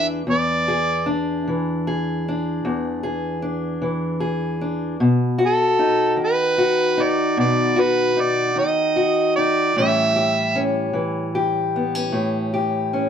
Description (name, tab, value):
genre	acoustic country blues, solo or duo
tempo	50 BPM (dotted quarters)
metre	12/8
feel	straight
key	unclear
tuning	A4 = 440 Hz
part	overdriven harmonica	melody	0.0-10.6 s	A4 to E5	-19 LUFS	right 3 dB	plate reverb
part	fingerpicked steel-string acoustic guitar	accompaniment	0.0-13.1 s	E2 to G#4	-20 LUFS	left 2 dB	none
room	moderate studio reverb, RT60 0.5 s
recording	none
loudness	-18 LUFS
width	side -8 dB against mid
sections	0.0-13.1 A section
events	none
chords	0.0 E7; 5.0 B; 9.8 A7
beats	| 0.26 1.44 2.63 3.81 | 5.00 6.19 7.38 8.57 | 9.77 10.96 12.15